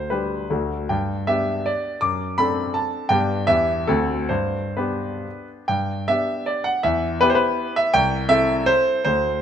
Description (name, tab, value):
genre	classical, romantic triple-time dance for piano with dotted rhythms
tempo	122-184 BPM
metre	3/4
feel	rubato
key	G major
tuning	A4 = 440 Hz
part	clear grand piano	solo	0.0-9.4 s	C2 to D6	-19 LUFS	equal	none
room	light reverb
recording	close, detailed microphones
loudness	-19 LUFS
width	side -8 dB against mid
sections	0.0-5.7 A section; 5.7-9.4 A section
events	none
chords	0.5 D; 0.9 G; 2.0 D7/F#; 3.1 G; 3.5 Em; 3.9 D7; 4.3 G; 6.8 Em; 7.9 Am7/C